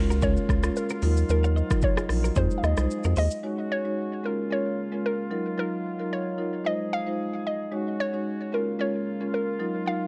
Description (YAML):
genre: afrobeats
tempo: 112 BPM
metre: 4/4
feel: swing 55% on 16ths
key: unclear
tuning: A4 = 440 Hz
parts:
  - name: hollow square pluck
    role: melody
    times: 0.0-10.1 s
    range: Bb4 to F5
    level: -33 LUFS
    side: equal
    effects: chorus, digital delay
  - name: marimba with medium mallets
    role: accompaniment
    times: 0.0-10.1 s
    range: Gb3 to Db5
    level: -32 LUFS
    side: equal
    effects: none
  - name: mellow brass ensemble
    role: sustained chords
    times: 0.0-10.1 s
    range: Db3 to Ab4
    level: -41 LUFS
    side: equal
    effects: none
  - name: round analog bass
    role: bass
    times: 0.0-3.3 s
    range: Bb1 to F2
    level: -26 LUFS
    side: equal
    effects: none
  - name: direct-recorded clean electric guitar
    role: riff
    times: 0.1-3.3 s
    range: F4 to F5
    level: -40 LUFS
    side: equal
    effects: analog chorus, digital delay
  - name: afro-pop drum kit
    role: drums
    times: 0.1-3.4 s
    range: hi-hat, kick drum, rim click, shaker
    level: -30 LUFS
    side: equal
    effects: vintage 12-bit sampler grit
room: little or no reverb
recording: worn, warbling old tape, cassette tape, warbly pitch drift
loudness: -27 LUFS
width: mono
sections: 0.0-3.4 A section; 3.4-10.1 A section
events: none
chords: 0.0 Db6; 1.0 Ebmadd9; 2.4 Fm7; 3.4 Ab7sus4; 4.2 Db6; 5.3 Ebmadd9; 6.6 Fm7; 7.7 Ab7sus4; 8.5 Db6